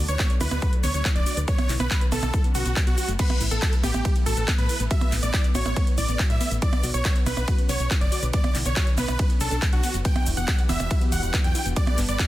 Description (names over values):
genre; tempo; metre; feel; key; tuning
uplifting trance; 140 BPM; 4/4; straight; B minor; A4 = 440 Hz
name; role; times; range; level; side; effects
analog string pad; sustained chords; 0.0-12.3 s; D3 to B4; -37 LUFS; equal; ensemble chorus, sidechain pumping
wide unison pluck; arpeggios; 0.0-12.3 s; A3 to B4; -35 LUFS; left 2 dB; sidechain pumping, dub echo
solid FM bass; bass; 0.0-12.2 s; D1 to A2; -27 LUFS; equal; sidechain pumping
big supersaw lead; melody; 0.1-12.3 s; F#4 to G5; -30 LUFS; right 1 dB; sidechain pumping, dub echo
techno drum kit; drums; 0.1-12.3 s; crash cymbal, handclaps, hi-hat, percussion blips, ride cymbal, shaker; -29 LUFS; right 2 dB; sidechain pumping on hats, studio reverb, sidechain pumping on perc, sidechain pumping on cymbals
electronic kick drum; drums; 0.2-12.3 s; none; -22 LUFS; equal; overdrive, studio reverb
room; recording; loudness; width
little or no reverb; dense, heavily limited modern master; -20 LUFS; side -15 dB against mid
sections
0.0-12.3 A section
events
none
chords
0.0 D; 1.5 Bmadd9; 3.2 Asus2; 6.6 Bmadd9; 10.1 Em7; 11.8 G6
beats
0.19 0.62 1.05 | 1.48 1.91 2.33 2.76 | 3.19 3.62 4.05 4.48 | 4.91 5.33 5.76 6.19 | 6.62 7.05 7.48 7.91 | 8.34 8.76 9.19 9.62 | 10.05 10.48 10.91 11.34 | 11.76 12.19